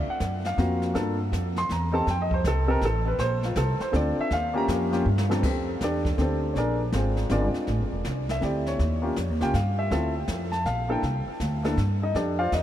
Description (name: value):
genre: jazz piano trio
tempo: 161 BPM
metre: 3/4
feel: swing 65% on 8ths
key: F major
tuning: A4 = 443 Hz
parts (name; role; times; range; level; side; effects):
- warm grand piano; melody; 0.0-12.6 s; F2 to C6; -26 LUFS; left 1 dB; tape echo
- upright bass; bass; 0.0-12.6 s; E1 to G2; -27 LUFS; equal; none
- jazz brush drum kit; drums; 0.2-12.6 s; brushed snare drum, crash cymbal, hi-hat, kick drum, snare drum; -35 LUFS; equal; none
room: moderate huge ambient reverb, RT60 6.6 s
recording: dreamy mix soaked in reverb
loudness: -23 LUFS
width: side -11 dB against mid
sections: 0.0-5.4 A section; 5.4-12.6 B section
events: drum fill 5.1-5.4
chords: 0.0 D7#9b13 (rootless); 0.9 Gm9; 2.1 F7; 3.2 Bbmaj9; 4.3 Eb9; 5.4 F69; 6.5 Bb9; 7.7 Am7; 8.8 Eb9; 9.9 Dmadd9; 11.0 Csus2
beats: 0.20 0.57 | 0.95 1.32 1.69 | 2.07 2.44 2.81 | 3.19 3.56 3.93 | 4.31 4.68 5.05 | 5.43 5.80 6.17 | 6.55 6.92 7.29 | 7.67 8.04 8.41 | 8.79 9.16 9.54 | 9.91 10.28 10.65 | 11.03 11.40 11.77 | 12.15 12.52